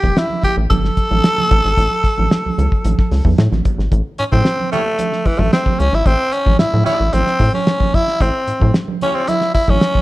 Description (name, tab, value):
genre	funk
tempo	112 BPM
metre	4/4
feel	straight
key	A mixolydian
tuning	A4 = 440 Hz
part	raspy tenor saxophone	melody	0.0-10.0 s	E3 to A4	-17 LUFS	equal	none
part	rubbery square bass	bass	0.0-9.8 s	E1 to A2	-17 LUFS	equal	none
part	cloth-damped thuddy drum kit	drums	0.0-10.0 s	hi-hat, kick drum, snare drum	-17 LUFS	equal	none
part	congas	percussion	0.0-10.0 s	none	-24 LUFS	right 6 dB	none
part	clear horn section	second line	4.7-9.4 s	C#4 to C#5	-26 LUFS	equal	none
room	light reverb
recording	dark, warm production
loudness	-13 LUFS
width	side -17 dB against mid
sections	0.0-3.9 A section; 3.9-10.0 B section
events	tenor saxophone solo 3.9-10.0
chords	0.0 N.C.; 3.9 A(#9)